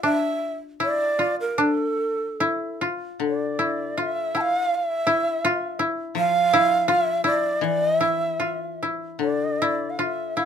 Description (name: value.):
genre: japanese traditional, Japanese chamber music.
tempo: 72-84 BPM.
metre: 2/4.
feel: rubato.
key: unclear.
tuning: A4 = 442 Hz.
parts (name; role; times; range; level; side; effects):
breathy bright long shakuhachi; melody; 0.0-10.5 s; A4 to A5; -23 LUFS; right 2 dB; none.
koto; second line; 0.0-10.5 s; D4 to F4; -24 LUFS; left 1 dB; none.
koto; accompaniment; 3.2-10.5 s; D3 to F3; -29 LUFS; left 6 dB; none.
room: light reverb.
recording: minimal, uncompressed stereo recording.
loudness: -21 LUFS.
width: side -8 dB against mid.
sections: 0.0-3.2 A section; 3.2-10.5 B section.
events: none.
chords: none.